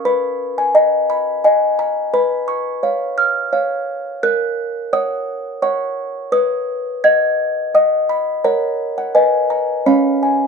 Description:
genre	classical, lullaby for music box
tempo	86 BPM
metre	3/4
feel	straight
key	F# major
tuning	A4 = 440 Hz
part	music box	solo	0.0-10.5 s	C#4 to G#6	-15 LUFS	equal	none
room	moderate small room reverb, RT60 0.5 s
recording	nothing above 10.7 kHz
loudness	-15 LUFS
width	side -5 dB against mid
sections	0.0-10.5 A section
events	none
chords	0.1 B; 2.1 C#7/B; 4.2 F#/A#; 6.3 B; 8.4 F#/A#; 9.1 G#m7/B; 9.9 C#7

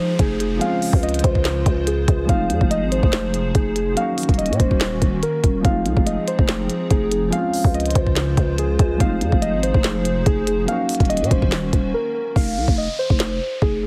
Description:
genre	hip hop, trap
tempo	143 BPM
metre	4/4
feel	half-time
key	F phrygian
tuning	A4 = 440 Hz
part	muted felt-like synth keys	melody	0.0-13.9 s	Ab4 to F5	-26 LUFS	equal	chorus
part	dark grand piano	accompaniment	0.0-12.4 s	F3 to Gb4	-29 LUFS	equal	none
part	hollow soft pad	sustained chords	0.0-12.3 s	Db3 to C5	-31 LUFS	equal	ensemble chorus
part	downlifter	sound effects	0.0-2.3, 12.4-13.9 s	none	-36 LUFS	equal	none
part	growling 808-style bass	bass	0.2-13.9 s	Eb1 to Bb2	-25 LUFS	equal	none
part	glitchy drum kit	drums	0.2-13.7 s	handclaps, hi-hat, kick drum, snare drum	-21 LUFS	equal	overdrive
room	little or no reverb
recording	heavily compressed radio sound, multiband compression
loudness	-19 LUFS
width	mono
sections	0.0-12.4 A section; 12.4-13.9 B section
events	break 11.9-12.4; hi-hats muted 12.4-13.9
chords	0.0 Fm7; 0.6 Dbmaj7; 2.3 Fm7; 4.0 Ebm7; 5.6 Fm7; 7.3 Dbmaj7; 9.0 Fm7; 10.7 Ebm7; 12.4 F5

